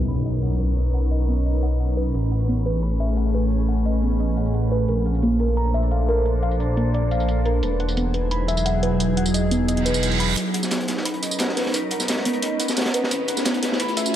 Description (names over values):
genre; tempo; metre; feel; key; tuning
liquid drum and bass; 175 BPM; 4/4; straight; B major; A4 = 440 Hz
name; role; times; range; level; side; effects
glassy FM pad; sustained chords; 0.0-14.2 s; F#3 to B#4; -26 LUFS; equal; ensemble chorus, built-in reverb, vintage 12-bit sampler grit
harp-like synth pluck; arpeggios; 0.0-14.1 s; A#3 to B5; -26 LUFS; right 1 dB; chorus, tape echo
dark detuned saw bass; bass; 0.0-14.2 s; E1 to B1; -23 LUFS; equal; high-pass filter
impact, reverse cymbal and riser; sound effects; 0.0-0.8, 9.8-14.2 s; none; -30 LUFS; right 1 dB; none
electronic hi-hat and tambourine; drums; 0.1-14.1 s; none; -28 LUFS; right 2 dB; none
crunchy breakbeat drum kit; drums; 10.4-14.1 s; hi-hat, snare drum; -25 LUFS; equal; high-pass filter on hats, high-pass filter on snare, high-pass filter on room
room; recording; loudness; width
light reverb; low-pass filter; -19 LUFS; side -11 dB against mid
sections
0.0-10.4 A section; 10.4-14.2 B section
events
impact 0.0-0.8; filter sweep on synth pluck 0.0-10.4; filter sweep 0.0-10.4; reverse cymbal 9.8-10.4; build-up 10.4-14.2; riser 10.4-14.2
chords
0.0 Bmaj9; 2.1 Amaj9; 4.9 A#maj9; 7.6 Emaj9; 10.4 Bmaj9; 13.1 Amaj9